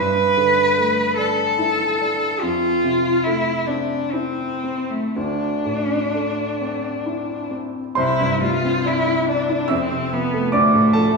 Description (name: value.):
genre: classical, impressionist duo for cello and grand piano.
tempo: 56-75 BPM.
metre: 3/4.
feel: rubato.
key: C major.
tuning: A4 = 439 Hz.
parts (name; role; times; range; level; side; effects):
clear cello; melody; 0.0-11.2 s; A3 to B4; -20 LUFS; equal; none.
clear baby grand piano; accompaniment; 0.0-11.2 s; C2 to E6; -22 LUFS; equal; none.
room: wet recital hall reverb, RT60 1.5 s.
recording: small room reverb.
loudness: -18 LUFS.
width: side -3 dB against mid.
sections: 0.0-8.0 A section; 8.0-11.2 B section.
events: none.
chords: 0.0 G69; 2.4 Fmaj7; 5.2 Dsus2; 8.0 Cadd9; 9.7 Fmaj7#11; 10.5 Dm.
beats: 0.77 1.59 | 2.42 3.24 4.13 | 5.16 6.13 7.06 | 7.98 8.86 9.71 | 10.54.